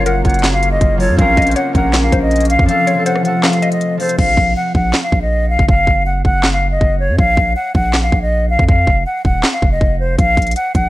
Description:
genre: hip hop, trap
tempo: 160 BPM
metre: 4/4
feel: half-time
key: Bb harmonic minor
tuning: A4 = 439 Hz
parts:
  - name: hollow concert flute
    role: melody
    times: 0.0-10.9 s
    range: C5 to Gb5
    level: -16 LUFS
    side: left 1 dB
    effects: none
  - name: mallet-like synth pluck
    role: second line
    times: 0.0-3.8 s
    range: Bb4 to F5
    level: -25 LUFS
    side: left 4 dB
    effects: chorus, tape echo
  - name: concert harp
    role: accompaniment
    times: 0.0-4.2 s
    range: F3 to Db5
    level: -19 LUFS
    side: left 1 dB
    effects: none
  - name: sweeping resonant pad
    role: sustained chords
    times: 0.0-4.2 s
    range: C3 to F4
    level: -27 LUFS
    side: equal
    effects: chorus, phaser
  - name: long sustained 808-style bass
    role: bass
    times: 0.0-10.9 s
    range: Eb1 to Gb2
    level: -17 LUFS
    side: equal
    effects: none
  - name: trap drum kit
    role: drums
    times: 0.1-10.8 s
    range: crash cymbal, handclaps, hi-hat, kick drum, rim click, snare drum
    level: -16 LUFS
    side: equal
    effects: vintage 12-bit sampler grit
room: digital ambience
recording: none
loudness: -12 LUFS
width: side -16 dB against mid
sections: 0.0-4.2 A section; 4.2-10.9 B section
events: kick muted 2.7-4.2; hi-hats muted 4.2-10.2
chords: 0.0 Gbmaj7; 1.2 Bbmadd9; 2.7 F; 4.2 Bb5; 5.7 Ebmadd9/Gb (rootless); 7.2 Bb5; 8.7 Ebmadd9 (rootless); 10.2 Bb5

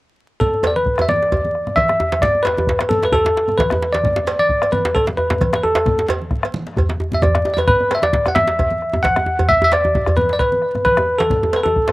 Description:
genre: west african traditional, West African drum ensemble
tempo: 132 BPM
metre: 4/4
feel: swing 54% on 16ths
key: D major pentatonic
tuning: A4 = 440 Hz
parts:
  - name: bell-like tine electric piano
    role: melody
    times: 0.4-11.9 s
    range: A4 to F#5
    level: -16 LUFS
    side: equal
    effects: none
  - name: bombo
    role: percussion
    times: 0.4-11.9 s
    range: none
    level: -22 LUFS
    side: left 1 dB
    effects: none
  - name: congas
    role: percussion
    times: 0.4-11.8 s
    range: none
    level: -29 LUFS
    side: right 2 dB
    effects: none
  - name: djembe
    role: percussion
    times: 0.4-11.9 s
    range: none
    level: -27 LUFS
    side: left 2 dB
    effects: none
  - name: cowbell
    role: percussion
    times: 0.6-11.9 s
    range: none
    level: -26 LUFS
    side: right 5 dB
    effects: slapback echo
  - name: djembe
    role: percussion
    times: 0.6-11.9 s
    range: none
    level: -22 LUFS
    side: right 1 dB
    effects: none
room: little or no reverb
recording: recorded outdoors, with no room sound, vinyl crackle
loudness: -14 LUFS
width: side -19 dB against mid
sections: 0.4-11.9 A section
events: drum fill 7.2-7.7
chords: none

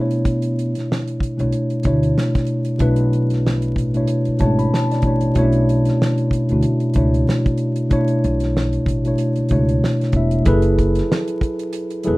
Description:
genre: R&B, neo-soul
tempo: 94 BPM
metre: 4/4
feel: swing 57% on 16ths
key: unclear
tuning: A4 = 440 Hz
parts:
  - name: mellow tine electric piano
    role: accompaniment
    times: 0.0-12.2 s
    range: B2 to B5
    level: -18 LUFS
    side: equal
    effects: none
  - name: upright bass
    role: bass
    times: 0.0-12.2 s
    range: E1 to B2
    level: -21 LUFS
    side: equal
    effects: none
  - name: damped 70s drum kit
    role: drums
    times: 0.1-12.2 s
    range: hi-hat, kick drum, snare drum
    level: -22 LUFS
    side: equal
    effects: none
room: wet studio ambience, RT60 0.5 s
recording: rough home demo mix, vinyl crackle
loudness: -16 LUFS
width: side -20 dB against mid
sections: 0.0-10.5 A section; 10.5-12.2 B section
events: tine electric piano fill 4.1-5.4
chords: 0.0 Bm11; 10.5 F#m11

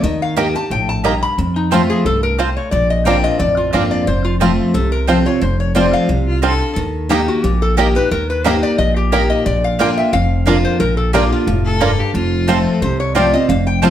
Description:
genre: bluegrass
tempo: 178 BPM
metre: 4/4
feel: swing 54% on 8ths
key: F mixolydian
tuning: A4 = 440 Hz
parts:
  - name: lap resonator guitar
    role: melody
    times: 0.0-13.9 s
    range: Eb4 to B5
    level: -19 LUFS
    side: left 2 dB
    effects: none
  - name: picked steel-string acoustic guitar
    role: accompaniment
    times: 0.0-13.9 s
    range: F2 to G4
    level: -18 LUFS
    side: left 1 dB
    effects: none
  - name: upright bass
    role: bass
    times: 0.0-13.9 s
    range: F1 to F2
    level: -19 LUFS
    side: equal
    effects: none
  - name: bluegrass banjo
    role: melody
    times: 0.4-13.9 s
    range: Bb3 to G4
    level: -21 LUFS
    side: right 4 dB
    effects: none
  - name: mandolin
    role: stabs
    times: 0.4-13.9 s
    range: Bb3 to Bb5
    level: -22 LUFS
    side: right 6 dB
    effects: none
  - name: clear fiddle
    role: second line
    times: 6.3-6.7, 11.6-12.7 s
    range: F4 to A4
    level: -23 LUFS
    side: left 1 dB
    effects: none
room: moderate studio reverb, RT60 0.9 s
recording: heard from further back in the room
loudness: -13 LUFS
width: side -10 dB against mid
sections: 0.0-6.8 A section; 6.8-13.9 B section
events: none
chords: 0.0 Eb; 1.4 F; 2.7 Bbadd9; 4.1 F; 6.8 Eb; 9.5 Bb; 12.1 F

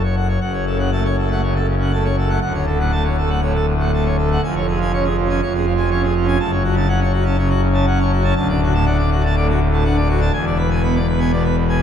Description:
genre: classical, organ toccata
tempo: 122 BPM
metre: 4/4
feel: straight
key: F# minor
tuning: A4 = 440 Hz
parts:
  - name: pipe organ, full organ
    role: solo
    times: 0.0-11.8 s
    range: D1 to B5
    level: -15 LUFS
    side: equal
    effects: none
room: wet church reverb, RT60 3.6 s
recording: dark, warm production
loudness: -16 LUFS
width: side -8 dB against mid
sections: 0.4-11.8 A section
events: none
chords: 0.4 F#m; 2.4 Dmaj7; 4.4 C#/E#; 6.4 F#m; 8.4 D; 10.3 E7

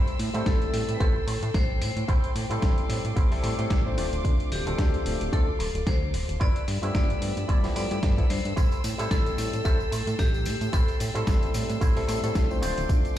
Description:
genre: nu-disco, nu disco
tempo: 111 BPM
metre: 4/4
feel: swing 56% on 16ths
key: A minor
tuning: A4 = 441 Hz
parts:
  - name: vibraphone with hard mallets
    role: melody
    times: 0.0-12.6 s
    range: G4 to D5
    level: -34 LUFS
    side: left 2 dB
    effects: dub echo
  - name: warm chamber violin section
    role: sustained chords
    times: 0.0-13.2 s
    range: A4 to E6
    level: -38 LUFS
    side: left 1 dB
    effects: vintage 12-bit sampler grit, sidechain pumping
  - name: electric guitar with an envelope filter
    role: riff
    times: 0.0-13.2 s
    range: D4 to D5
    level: -37 LUFS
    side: right 3 dB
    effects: lush chorus, tape echo
  - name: fat analog bass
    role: bass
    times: 0.0-13.2 s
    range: D1 to A2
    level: -29 LUFS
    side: equal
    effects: none
  - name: dusty soul sampler-style drum kit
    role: drums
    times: 0.1-13.1 s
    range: hi-hat, snare drum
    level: -35 LUFS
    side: equal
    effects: overdrive
  - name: barky tine electric piano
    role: accompaniment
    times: 0.3-13.2 s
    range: F3 to E5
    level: -33 LUFS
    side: left 2 dB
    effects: overdrive, medium tremolo, sidechain pumping, tape echo
  - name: electronic kick drum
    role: drums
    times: 0.5-13.0 s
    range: none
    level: -24 LUFS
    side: equal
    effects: none
  - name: tambourine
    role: percussion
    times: 8.6-13.1 s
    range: none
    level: -44 LUFS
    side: left 4 dB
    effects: none
room: digital ambience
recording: played on a big sound system in a bare room, stone room reverb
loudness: -23 LUFS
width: side -12 dB against mid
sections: 0.0-13.2 A section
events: none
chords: 0.0 Am7; 4.0 Dm7; 6.4 G13; 8.6 Am7; 12.6 Dm7

